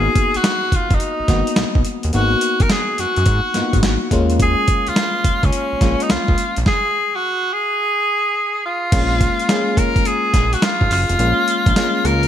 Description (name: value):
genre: R&B, new jack swing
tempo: 106 BPM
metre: 4/4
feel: swing 66% on 16ths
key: G# dorian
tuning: A4 = 440 Hz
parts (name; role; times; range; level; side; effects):
- bright tenor saxophone; melody; 0.0-12.3 s; C#4 to A#4; -19 LUFS; equal; ping-pong delay
- FM electric piano; accompaniment; 0.0-12.3 s; G#3 to G#4; -22 LUFS; left 3 dB; chorus
- fat analog bass; bass; 0.0-12.3 s; E#1 to G#2; -20 LUFS; equal; none
- dusty soul sampler-style drum kit; drums; 0.2-12.3 s; crash cymbal, hi-hat, kick drum, snare drum; -18 LUFS; equal; overdrive
room: light reverb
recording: bright 1980s-style digital production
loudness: -15 LUFS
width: side -10 dB against mid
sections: 0.0-8.9 A section; 8.9-12.3 B section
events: none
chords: 0.0 G#m7; 4.1 D#9sus4; 8.9 A#m7